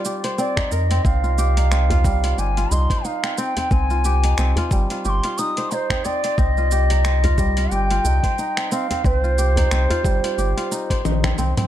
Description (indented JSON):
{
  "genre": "organic downtempo",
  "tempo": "90 BPM",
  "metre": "4/4",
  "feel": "swing 57% on 16ths",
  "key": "C minor",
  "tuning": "A4 = 439 Hz",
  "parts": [
    { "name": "bansuri", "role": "melody", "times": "0.0-11.1 s", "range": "C5 to Eb6", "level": "-24 LUFS", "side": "right 1 dB", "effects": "tape echo" },
    { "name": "kora", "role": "arpeggios", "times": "0.0-11.7 s", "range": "G3 to C5", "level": "-26 LUFS", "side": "equal", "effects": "tape echo" },
    { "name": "dusty soul sampler-style drum kit", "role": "drums", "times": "0.0-11.7 s", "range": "cabasa, finger snaps, hi-hat, toms", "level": "-28 LUFS", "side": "left 1 dB", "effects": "none" },
    { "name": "electronic kick drum", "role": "drums", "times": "0.6-11.4 s", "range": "none", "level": "-21 LUFS", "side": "equal", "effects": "none" },
    { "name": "djembe", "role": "percussion", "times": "0.6-11.5 s", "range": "none", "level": "-27 LUFS", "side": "equal", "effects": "none" },
    { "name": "warm sub bass", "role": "bass", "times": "0.7-11.5 s", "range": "G1 to F2", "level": "-19 LUFS", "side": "equal", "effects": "sidechain pumping" }
  ],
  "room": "digital ambience",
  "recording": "dark, warm production",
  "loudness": "-17 LUFS",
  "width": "side -12 dB against mid",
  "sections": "0.0-11.7 A section",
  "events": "drum fill 11.1-11.7",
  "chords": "0.0 Cm7"
}